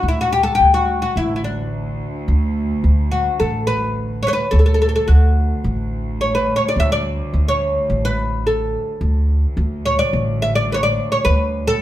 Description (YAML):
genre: turkish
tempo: 107 BPM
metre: 4/4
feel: straight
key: D makam rast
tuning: A4 = 440 Hz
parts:
  - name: oud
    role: melody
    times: 0.0-11.8 s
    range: D4 to E5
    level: -18 LUFS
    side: left 1 dB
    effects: none
  - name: upright bass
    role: bass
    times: 0.0-11.7 s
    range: A1 to D2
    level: -18 LUFS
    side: equal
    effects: none
  - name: rich studio cello section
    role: drone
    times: 0.0-11.8 s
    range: D2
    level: -27 LUFS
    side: right 2 dB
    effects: none
room: wet studio reverb, RT60 0.7 s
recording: band playing live in one room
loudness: -16 LUFS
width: side -13 dB against mid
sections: 0.0-11.8 A section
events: none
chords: none